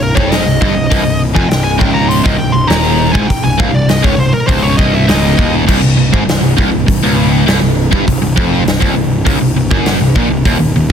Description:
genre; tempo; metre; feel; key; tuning
heavy metal; 101 BPM; 4/4; straight; C phrygian; A4 = 440 Hz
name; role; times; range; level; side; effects
high-gain lead guitar; melody; 0.0-5.5 s; Bb4 to C6; -18 LUFS; left 1 dB; distortion, tape echo
distorted electric guitar; riff; 0.0-10.9 s; C2 to Bb2; -13 LUFS; equal; overdrive
fuzz picked electric bass; bass; 0.0-10.9 s; C1 to Bb1; -17 LUFS; equal; overdrive
big rock drum kit; drums; 0.2-10.6 s; crash cymbal, hi-hat, kick drum, snare drum; -14 LUFS; equal; none
room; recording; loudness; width
small room ambience; dense, heavily limited modern master; -9 LUFS; side -8 dB against mid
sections
0.0-5.7 A section; 5.7-10.9 B section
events
lead electric guitar solo 0.0-5.7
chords
0.0 Cm; 5.7 C5

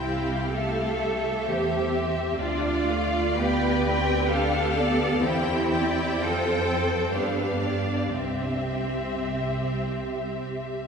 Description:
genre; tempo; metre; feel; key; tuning
classical, slow romantic movement for string orchestra; 57-67 BPM; 3/4; rubato; C major; A4 = 440 Hz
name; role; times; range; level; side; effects
clear symphonic violin section; melody; 0.0-10.9 s; D5 to G5; -33 LUFS; left 4 dB; none
dark studio violin section; second line; 0.0-10.7 s; B4 to G5; -31 LUFS; left 2 dB; none
rich symphonic viola section; accompaniment; 0.0-10.9 s; A3 to A4; -28 LUFS; equal; none
rich symphonic cello section; bass; 0.0-10.6 s; C4 to B4; -29 LUFS; right 2 dB; none
rich symphonic double bass section; bass; 0.0-10.9 s; C2 to G2; -30 LUFS; right 2 dB; none
room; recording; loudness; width
wet church reverb, RT60 3.6 s; none; -23 LUFS; side -6 dB against mid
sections
0.0-10.9 A section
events
none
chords
0.0 C; 2.4 G7/D; 5.2 C/E; 6.2 Fadd9; 7.1 G7; 8.1 C

